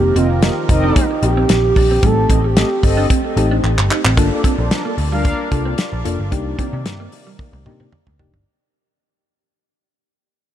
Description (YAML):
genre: early-eighties boogie funk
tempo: 112 BPM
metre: 4/4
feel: straight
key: G minor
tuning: A4 = 438 Hz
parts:
  - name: gliding portamento lead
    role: melody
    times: 0.0-3.0 s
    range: Eb4 to A4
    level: -20 LUFS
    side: right 3 dB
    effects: chorus, analog delay
  - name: mellow FM electric piano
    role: accompaniment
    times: 0.0-8.3 s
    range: A3 to A4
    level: -24 LUFS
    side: left 4 dB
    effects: chorus
  - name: warm analog pad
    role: sustained chords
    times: 0.0-8.4 s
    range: C3 to A5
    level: -27 LUFS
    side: left 1 dB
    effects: chorus
  - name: vintage muted picked electric bass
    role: bass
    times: 0.0-8.4 s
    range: F1 to C3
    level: -18 LUFS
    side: equal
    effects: none
  - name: mellow synth brass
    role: second line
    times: 0.2-5.5 s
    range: F3 to F5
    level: -25 LUFS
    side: left 2 dB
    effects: chorus, analog delay
  - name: clean electric guitar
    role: riff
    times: 0.2-8.3 s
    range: G3 to Eb4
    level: -25 LUFS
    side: right 5 dB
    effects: analog chorus
  - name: damped 70s drum kit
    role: drums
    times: 0.2-8.5 s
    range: handclaps, hi-hat, kick drum, snare drum, toms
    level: -18 LUFS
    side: equal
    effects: none
room: light reverb, small room ambience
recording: none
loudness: -14 LUFS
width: side -11 dB against mid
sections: 0.0-4.2 A section; 4.2-8.5 B section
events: drum fill 3.6-4.2, 7.4-8.5; fade-out 4.2-8.5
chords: 0.0 F9sus4; 2.0 Am7b5; 4.2 Gm9; 6.3 Cm7